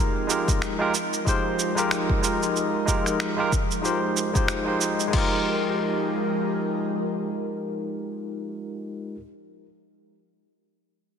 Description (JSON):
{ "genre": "sunset chillout", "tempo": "93 BPM", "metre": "4/4", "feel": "swing 57% on 16ths", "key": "F minor", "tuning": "A4 = 440 Hz", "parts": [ { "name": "barky tine electric piano", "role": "accompaniment", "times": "0.0-9.2 s", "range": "Ab3 to C5", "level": "-26 LUFS", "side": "equal", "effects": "overdrive, auto-pan, ping-pong delay" }, { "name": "airy breathy pad", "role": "sustained chords", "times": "0.0-8.5 s", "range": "F3 to Bb4", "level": "-29 LUFS", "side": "equal", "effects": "chorus" }, { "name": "dusty soul sampler-style drum kit", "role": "drums", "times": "0.3-5.3 s", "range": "cabasa, crash cymbal, finger snaps", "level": "-29 LUFS", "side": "right 2 dB", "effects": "studio reverb, soft clipping on snare" }, { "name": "electronic kick drum", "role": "drums", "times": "0.5-5.3 s", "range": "none", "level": "-25 LUFS", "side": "equal", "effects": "studio reverb" } ], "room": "moderate lush hall reverb, RT60 2.7 s", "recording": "dense, heavily limited modern master", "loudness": "-22 LUFS", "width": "side -7 dB against mid", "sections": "0.0-5.1 A section; 5.1-7.7 B section", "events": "none", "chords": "0.0 Fm11", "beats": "0.62 1.26 1.91 | 2.55 3.20 3.84 4.49 | 5.13 5.78 6.42 7.07" }